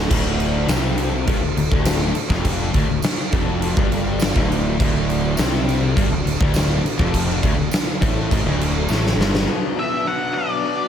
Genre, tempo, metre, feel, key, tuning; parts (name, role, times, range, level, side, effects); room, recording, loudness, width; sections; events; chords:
classic rock; 102 BPM; 4/4; straight; D mixolydian; A4 = 439 Hz
string machine, cellos; sustained chords; 0.0-10.9 s; D4 to D5; -30 LUFS; equal; phaser, ensemble chorus
crunchy overdriven guitar; riff; 0.0-9.5 s; D2 to C3; -27 LUFS; right 7 dB
distorted electric guitar; riff; 0.0-10.9 s; D2 to B3; -26 LUFS; left 7 dB; overdrive, slapback echo
overdriven electric guitar; riff; 0.0-9.5 s; D2 to C3; -26 LUFS; left 1 dB; spring reverb
fuzz fingered electric bass; bass; 0.0-9.5 s; D1 to C2; -24 LUFS; equal; overdrive
huge arena drum kit; drums; 0.1-9.5 s; crash cymbal, kick drum, snare drum; -21 LUFS; equal
tambourine; percussion; 0.7-9.0 s; -37 LUFS; right 6 dB
octave-fuzz lead guitar; melody; 9.8-10.9 s; D5 to F#5; -25 LUFS; left 1 dB; distortion, tape echo
moderate lush hall reverb, RT60 1.9 s, studio ambience; big arena sound; -17 LUFS; side -9 dB against mid
0.1-9.5 A section; 9.5-10.9 B section
drum fill 8.9-9.5
0.1 D; 9.5 Bm